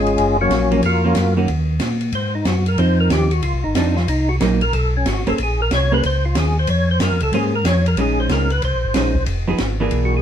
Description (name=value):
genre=soul jazz organ trio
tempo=185 BPM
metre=4/4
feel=swing 64% on 8ths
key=Bb minor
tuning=A4 = 440 Hz
part: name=percussive tonewheel organ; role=melody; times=0.0-10.2 s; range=Gb3 to Db5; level=-20 LUFS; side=left 1 dB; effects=chorus vibrato, slow rotary speaker
part: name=mellow tonewheel organ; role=bass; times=0.0-10.2 s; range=F1 to Bb2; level=-19 LUFS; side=equal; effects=chorus vibrato, slow rotary speaker
part: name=open jazz drum kit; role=drums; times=0.1-10.0 s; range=hi-hat, kick drum, ride cymbal, snare drum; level=-25 LUFS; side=equal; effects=none
part: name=vintage hollow-body jazz guitar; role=accompaniment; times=0.7-10.2 s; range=Eb3 to C5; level=-21 LUFS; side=right 2 dB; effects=none
room=moderate studio reverb, RT60 0.8 s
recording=band playing live in one room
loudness=-16 LUFS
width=side -9 dB against mid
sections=0.0-8.0 A section; 8.0-10.2 A section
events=tonewheel organ solo 0.0-10.2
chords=0.2 Gbmaj7; 1.5 Eb5; 2.1 Gb69; 2.8 Dbmaj9; 4.1 Cm7b5; 4.7 Bsus2; 5.4 Bbm9; 8.0 Bbm11; 9.3 Fm7b5